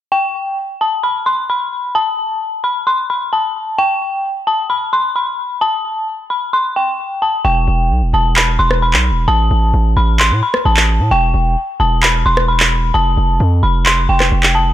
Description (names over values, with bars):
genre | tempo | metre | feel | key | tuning
hip hop, trap | 131 BPM | 4/4 | half-time | E phrygian | A4 = 440 Hz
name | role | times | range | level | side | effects
dark detuned synth bell | melody | 0.1-14.7 s | G5 to C6 | -16 LUFS | left 2 dB | chorus, low-pass filter, ping-pong delay
distorted 808-style bass | bass | 7.4-14.7 s | E1 to A2 | -14 LUFS | right 1 dB | distortion
electronic handclaps and rim click | drums | 8.4-14.5 s | none | -15 LUFS | equal | none
room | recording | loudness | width
little or no reverb | none | -13 LUFS | side -12 dB against mid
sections
0.1-7.4 A section; 7.4-14.7 B section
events
hi-hats muted 7.4-14.7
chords
0.1 N.C.; 7.4 Em; 9.3 Asus2; 11.1 Em; 12.9 F